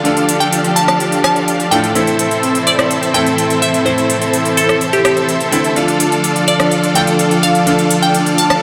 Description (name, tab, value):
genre	EDM, festival progressive house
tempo	126 BPM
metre	4/4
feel	straight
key	D minor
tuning	A4 = 440 Hz
part	bright concert grand piano	accompaniment	0.0-8.6 s	A2 to A4	-20 LUFS	equal	none
part	rich studio string section	sustained chords	0.0-8.6 s	E3 to A4	-21 LUFS	equal	none
part	dense compressed supersaw	riff	0.0-8.6 s	C4 to F5	-20 LUFS	equal	low-pass filter
part	big-room dance drum kit	drums	0.0-8.6 s	hi-hat, rim click	-22 LUFS	equal	none
part	glassy wavetable pluck	melody	0.4-8.6 s	G4 to A5	-19 LUFS	equal	chorus, tape echo
room	moderate lush hall reverb, RT60 2.4 s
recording	none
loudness	-13 LUFS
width	mono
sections	0.0-8.6 A section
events	none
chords	0.0 Dm; 2.0 Am; 5.8 Dm